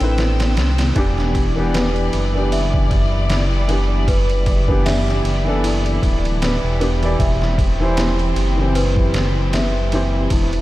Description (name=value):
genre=trip hop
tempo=77 BPM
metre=4/4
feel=swing 56% on 16ths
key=E minor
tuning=A4 = 440 Hz
part: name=felt-muted upright piano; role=accompaniment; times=0.0-10.3 s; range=D3 to D5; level=-22 LUFS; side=equal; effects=tremolo, tape echo
part: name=clear studio violin section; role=sustained chords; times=0.0-10.6 s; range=G3 to E6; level=-27 LUFS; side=left 1 dB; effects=none
part: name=dark detuned saw bass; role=bass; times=0.0-10.6 s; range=D1 to C2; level=-19 LUFS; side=equal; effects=none
part: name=trip hop sampler-style drum kit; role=drums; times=0.0-10.6 s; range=hi-hat, kick drum, ride cymbal, snare drum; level=-21 LUFS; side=equal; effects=overdrive
part: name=large celesta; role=arpeggios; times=1.0-10.6 s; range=E4 to E5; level=-26 LUFS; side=equal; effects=diffuse ambient delay
room=light reverb, small room ambience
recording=none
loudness=-15 LUFS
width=side -16 dB against mid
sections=1.0-10.6 A section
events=none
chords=0.0 D9sus4; 1.0 Em7; 7.2 C/E